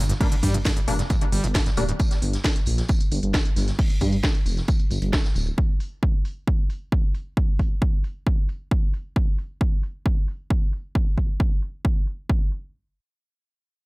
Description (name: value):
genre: driving peak-time techno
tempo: 134 BPM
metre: 4/4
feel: straight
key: G minor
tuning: A4 = 440 Hz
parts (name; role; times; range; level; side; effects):
- screaming distorted acid line; riff; 0.0-1.9 s; G2 to G3; -29 LUFS; equal; distortion, chorus, sidechain pumping, tape echo
- dark detuned saw bass; bass; 0.0-5.5 s; D1 to G2; -24 LUFS; equal; sidechain pumping
- techno drum kit; drums; 0.1-12.6 s; hi-hat, snare drum; -30 LUFS; equal; overdrive, low-pass filter on hats, low-pass filter on snare, low-pass filter on cymbals
- vintage drum kit; drums; 0.1-5.5 s; hi-hat, snare drum, tambourine; -36 LUFS; equal; high-pass filter on hats, high-pass filter on snare, high-pass filter on perc, high-pass filter on room
- rave stab; stabs; 0.2-1.8 s; G3 to D4; -32 LUFS; left 2 dB; chorus, built-in reverb, vintage 12-bit sampler grit, sidechain pumping, tape echo
- electronic kick drum; drums; 0.2-12.4 s; none; -21 LUFS; equal; overdrive
room: small room ambience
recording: none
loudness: -21 LUFS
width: side -24 dB against mid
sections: 0.0-12.7 A section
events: filter sweep on drum 0.0-12.7; filter sweep on synth stab 0.0-2.0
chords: none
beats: | 0.20 0.65 1.10 1.55 | 2.00 2.44 2.89 3.34 | 3.79 4.24 4.68 5.13 | 5.58 6.03 6.47 6.92 | 7.37 7.82 8.27 8.71 | 9.16 9.61 10.06 10.50 | 10.95 11.40 11.85 12.29